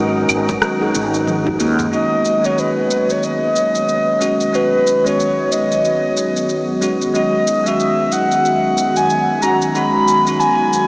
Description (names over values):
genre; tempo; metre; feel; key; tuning
organic downtempo; 92 BPM; 4/4; swing 59% on 16ths; G# minor; A4 = 444 Hz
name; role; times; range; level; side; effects
breathy flute-like synth lead; melody; 0.0-10.9 s; A#4 to B5; -16 LUFS; equal; wide subtle chorus, tape echo
bell-like tine electric piano; accompaniment; 0.0-10.9 s; G#3 to F#4; -20 LUFS; equal; sidechain pumping, tape echo
warm analog pad; sustained chords; 0.0-10.9 s; D#3 to F#4; -22 LUFS; equal; lush chorus, sidechain pumping
steel tongue drum; arpeggios; 0.0-1.8 s; D#3 to G#4; -23 LUFS; equal; tape echo
mellow fretless electric bass; bass; 0.0-1.9 s; G#1 to D#2; -23 LUFS; equal; lush chorus
wind-like tuned noise texture; texture; 0.0-1.9 s; B3 to G#4; -33 LUFS; equal; none
afro-pop drum kit; drums; 0.3-10.9 s; claves, rim click, shaker, toms; -24 LUFS; equal; studio reverb
djembe; percussion; 0.3-1.9 s; none; -36 LUFS; equal; none
electronic kick drum; drums; 0.5-1.6 s; none; -27 LUFS; equal; studio reverb
room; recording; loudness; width
wet huge ambient reverb, RT60 7.6 s; dreamy mix soaked in reverb, small speaker sound; -14 LUFS; side -27 dB against mid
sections
0.0-1.9 A section; 1.9-10.9 B section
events
drum fill 1.3-1.9; filter sweep on analog synth pad 1.9-10.9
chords
0.0 D#m7/G#; 1.9 G#m7